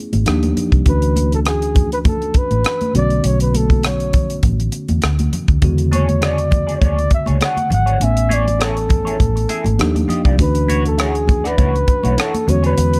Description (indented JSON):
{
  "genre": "lush 1970s-style soul",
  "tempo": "101 BPM",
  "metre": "4/4",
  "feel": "swing 54% on 16ths",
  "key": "unclear",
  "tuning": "A4 = 440 Hz",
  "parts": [
    { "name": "mellow tine electric piano", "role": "accompaniment", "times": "0.0-13.0 s", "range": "C#3 to G#5", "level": "-24 LUFS", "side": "equal", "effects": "none" },
    { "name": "vintage muted fingered electric bass", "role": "bass", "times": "0.1-13.0 s", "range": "G#1 to E2", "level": "-20 LUFS", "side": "equal", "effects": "none" },
    { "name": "tight funk drum kit", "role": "drums", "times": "0.1-13.0 s", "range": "hi-hat, kick drum, rim click", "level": "-20 LUFS", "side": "equal", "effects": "none" },
    { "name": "congas", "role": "percussion", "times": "0.1-12.6 s", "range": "none", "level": "-27 LUFS", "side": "equal", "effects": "none" },
    { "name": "breathy flugelhorn", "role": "melody", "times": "0.9-13.0 s", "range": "G#4 to F#5", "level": "-23 LUFS", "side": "equal", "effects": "none" },
    { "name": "electric guitar through a small old amp", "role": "riff", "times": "5.9-12.7 s", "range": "D4 to E5", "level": "-29 LUFS", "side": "equal", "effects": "wah" }
  ],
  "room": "little or no reverb",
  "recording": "none",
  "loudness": "-16 LUFS",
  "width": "mono",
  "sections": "0.0-13.0 A section",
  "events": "none",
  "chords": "0.3 D#maj9; 0.9 Dmaj9; 2.9 Bm7; 5.6 E13; 8.0 Amaj7; 9.8 D#maj9; 10.4 Dmaj9; 12.5 E13"
}